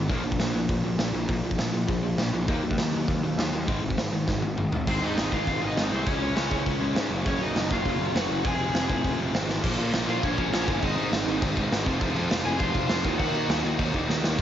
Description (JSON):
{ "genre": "punk rock", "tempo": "201 BPM", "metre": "4/4", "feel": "straight", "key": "Bb minor", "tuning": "A4 = 439 Hz", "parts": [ { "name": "distorted electric guitar", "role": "riff", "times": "0.0-14.4 s", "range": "F2 to Eb4", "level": "-32 LUFS", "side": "left 8 dB", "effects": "distortion" }, { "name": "distorted electric guitar", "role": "riff", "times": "0.0-14.4 s", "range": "F2 to Gb4", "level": "-33 LUFS", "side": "right 9 dB", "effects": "distortion" }, { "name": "fuzz picked electric bass", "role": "bass", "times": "0.0-14.4 s", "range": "F1 to Eb3", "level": "-29 LUFS", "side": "equal", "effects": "overdrive" }, { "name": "raw garage drum kit", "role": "drums", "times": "0.1-14.4 s", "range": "crash cymbal, hi-hat, kick drum, snare drum, toms", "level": "-28 LUFS", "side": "equal", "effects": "none" }, { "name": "overdriven semi-hollow guitar", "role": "melody", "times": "4.9-13.8 s", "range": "C4 to Ab5", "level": "-30 LUFS", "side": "equal", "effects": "cassette tape" } ], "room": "studio reverb", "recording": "home recording on cassette, nothing above 7.5 kHz", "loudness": "-23 LUFS", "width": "side -10 dB against mid", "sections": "0.0-4.9 A section; 4.9-9.6 B section; 9.6-14.4 C section", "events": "drum fill 4.3-4.9, 9.5, 14.1", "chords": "0.1 Bb5; 2.5 Ebm; 3.7 Ab5; 4.9 Ab; 6.1 Db; 7.1 Gb; 8.4 Fm; 9.6 Bbm; 10.8 Ab; 11.9 Fm; 13.1 Ebm" }